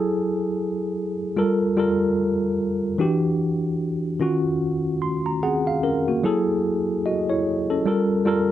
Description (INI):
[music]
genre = R&B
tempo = 74 BPM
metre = 4/4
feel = swing 59% on 16ths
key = unclear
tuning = A4 = 439 Hz
[part]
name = mellow tine electric piano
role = solo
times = 0.0-8.5 s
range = D#3 to B#5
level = -20 LUFS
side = equal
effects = medium stereo tremolo
[sound]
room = wet studio reverb, RT60 0.5 s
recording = nothing above 10.9 kHz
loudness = -20 LUFS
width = side -12 dB against mid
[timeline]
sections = 0.0-8.5 A section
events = tine electric piano fill 4.6-6.2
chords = 0.0 F#m9; 1.4 Gm9; 3.0 Em9; 4.2 D#m9; 6.2 F#m9; 7.9 Gm9